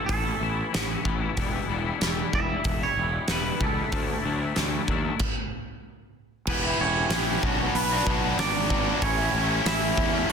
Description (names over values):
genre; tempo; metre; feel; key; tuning
quiet-loud alternative rock; 94 BPM; 4/4; straight; E dorian; A4 = 439 Hz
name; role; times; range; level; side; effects
twangy electric guitar; melody; 0.0-10.3 s; B3 to E5; -29 LUFS; right 4 dB; spring reverb
twangy electric guitar; arpeggios; 0.0-5.2 s; E2 to E4; -30 LUFS; left 9 dB; analog chorus, analog delay
fuzz fingered electric bass; bass; 0.1-10.3 s; E1 to E2; -30 LUFS; equal; overdrive
huge arena drum kit; drums; 0.1-10.3 s; crash cymbal, hi-hat, kick drum, snare drum; -28 LUFS; right 1 dB; none
distorted electric guitar; riff; 6.5-10.3 s; A2 to G4; -25 LUFS; left 1 dB; overdrive
room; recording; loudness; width
little or no reverb; dense, heavily limited modern master; -23 LUFS; side -6 dB against mid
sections
0.0-6.5 A section; 6.5-10.3 B section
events
stop 5.2-6.5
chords
0.0 Aadd9; 1.4 Em; 3.9 Dadd9; 6.5 Em; 7.4 Bm; 9.0 A